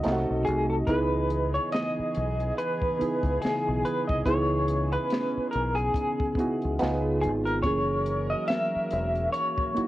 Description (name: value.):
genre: R&B, neo-soul.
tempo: 71 BPM.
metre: 4/4.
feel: swing 58% on 16ths.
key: C# dorian.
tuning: A4 = 444 Hz.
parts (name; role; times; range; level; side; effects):
electric guitar through a small old amp; melody; 0.0-9.9 s; G#4 to E5; -28 LUFS; equal; tremolo, cassette tape.
bright reed electric piano; accompaniment; 0.0-9.9 s; E3 to G#4; -30 LUFS; right 2 dB; phaser, cassette tape.
hollow soft pad; sustained chords; 0.0-9.9 s; C3 to D#5; -36 LUFS; left 1 dB; chorus, cassette tape.
warm horn section; stabs; 0.0-9.7 s; D#3 to B4; -41 LUFS; left 2 dB; cassette tape.
compact cocktail drum kit; drums; 0.0-9.9 s; hi-hat, kick drum, snare drum; -32 LUFS; left 1 dB; cassette tape.
deep dub fingered electric bass; bass; 0.1-9.8 s; E1 to C#2; -30 LUFS; equal; none.
room: light reverb.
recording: home recording on cassette.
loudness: -24 LUFS.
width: side -15 dB against mid.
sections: 0.0-9.9 A section.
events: none.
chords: 0.0 Cdim7; 0.9 C#m9; 6.8 C#7; 7.6 F#13.